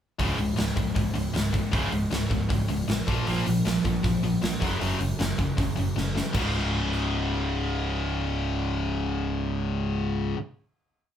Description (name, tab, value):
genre	punk rock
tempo	156 BPM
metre	4/4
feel	straight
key	Db major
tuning	A4 = 440 Hz
part	sludgy distorted guitar	riff	0.2-10.4 s	Db2 to Bb3	-30 LUFS	right 4 dB	overdrive
part	tight distorted guitar	riff	0.2-10.4 s	Db2 to Bb3	-30 LUFS	left 6 dB	distortion
part	picked electric bass	bass	0.2-10.3 s	Db1 to Bb1	-30 LUFS	equal	none
part	big rock drum kit	drums	0.2-7.0 s	crash cymbal, hi-hat, kick drum, rim click, snare drum	-29 LUFS	equal	none
room	light reverb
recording	band playing live in one room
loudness	-24 LUFS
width	side -10 dB against mid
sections	0.2-6.3 verse; 6.3-9.4 final chord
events	drum fill 6.0-6.3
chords	0.2 Db5; 3.1 Bb5; 4.6 Gb5; 6.3 Db5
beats	| 0.20 0.58 0.96 1.35 | 1.73 2.12 2.50 2.88 | 3.27 3.65 4.04 4.42 | 4.81 5.19 5.58 5.96 | 6.34 6.73 7.11 7.50 | 7.88 8.26 8.64 9.03